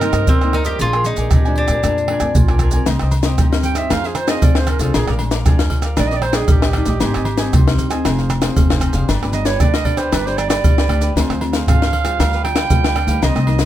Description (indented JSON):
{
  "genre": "samba and choro",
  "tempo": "116 BPM",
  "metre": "4/4",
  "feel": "straight",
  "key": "unclear",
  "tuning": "A4 = 442 Hz",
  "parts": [
    { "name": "mandolin", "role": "melody", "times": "0.0-2.3 s", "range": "C4 to G4", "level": "-20 LUFS", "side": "left 2 dB", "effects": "none" },
    { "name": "clear clarinet", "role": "second line", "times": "0.0-13.7 s", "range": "F4 to G5", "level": "-22 LUFS", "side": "right 6 dB", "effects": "none" },
    { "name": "cavaquinho", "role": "accompaniment", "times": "0.0-13.7 s", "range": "D4 to Ab5", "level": "-28 LUFS", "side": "right 4 dB", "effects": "none" },
    { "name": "nylon-string guitar", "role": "accompaniment", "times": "0.0-13.7 s", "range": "F2 to Ab4", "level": "-25 LUFS", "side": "left 4 dB", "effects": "none" },
    { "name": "upright bass", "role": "bass", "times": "0.0-13.7 s", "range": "F1 to Bb2", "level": "-20 LUFS", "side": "equal", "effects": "none" },
    { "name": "maracas, pandeiro, tamborim, surdo, caixa and agogo bells", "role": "percussion", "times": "0.0-13.7 s", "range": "none", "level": "-16 LUFS", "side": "equal", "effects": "none" }
  ],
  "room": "moderate small room reverb, RT60 0.5 s",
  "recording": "none",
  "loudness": "-14 LUFS",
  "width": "side -12 dB against mid",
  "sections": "0.0-2.9 A section; 2.9-13.7 B section",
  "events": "clarinet solo 2.9-13.7",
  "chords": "0.0 Cm7; 0.8 Bb7; 2.9 Cm; 3.9 Fm7; 5.0 Bb7; 6.0 Ebmaj7/Bb; 7.0 Abmaj7; 8.1 Fm7; 9.1 G; 11.2 Dm7b5; 12.2 G7/D",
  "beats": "0.29 | 0.81 1.32 1.84 2.36 | 2.88 3.40 3.92 4.43 | 4.95 5.47 5.99 6.50 | 7.02 7.54 8.06 8.58 | 9.09 9.61 10.13 10.64 | 11.16 11.68 12.19 12.71 | 13.23"
}